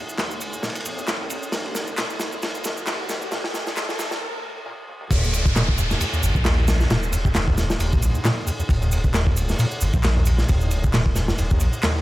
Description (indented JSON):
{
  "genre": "breakbeat, breaks",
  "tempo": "134 BPM",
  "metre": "4/4",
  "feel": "swing 56% on 16ths",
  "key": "unclear",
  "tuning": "A4 = 440 Hz",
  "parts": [
    { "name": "overdriven acid bass", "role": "riff", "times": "0.0-12.0 s", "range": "Db2 to Bb2", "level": "-26 LUFS", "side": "equal", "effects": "distortion, ensemble chorus, cassette tape" },
    { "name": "saturated sub bass", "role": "bass", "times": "0.0-11.7 s", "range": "Eb1 to Bb1", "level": "-23 LUFS", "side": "equal", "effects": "none" },
    { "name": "riser and downlifter", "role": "sound effects", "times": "0.4-8.7 s", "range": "none", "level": "-31 LUFS", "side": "equal", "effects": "none" },
    { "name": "electronic shaker and handclaps", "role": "drums", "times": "0.1-11.9 s", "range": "none", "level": "-31 LUFS", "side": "equal", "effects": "none" },
    { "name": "crunchy breakbeat drum kit", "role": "drums", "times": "0.2-11.9 s", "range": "crash cymbal, kick drum, ride cymbal, snare drum", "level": "-23 LUFS", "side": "equal", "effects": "none" }
  ],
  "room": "small room reverb",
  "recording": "high-pass filter",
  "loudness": "-20 LUFS",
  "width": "side -16 dB against mid",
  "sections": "0.0-5.1 A section; 5.1-12.0 B section",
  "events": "build-up 0.0-5.1; drum fill 0.0-4.2; riser 0.4-4.2; break 4.2-5.1; drop 5.1-12.0",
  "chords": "0.0 Eb5"
}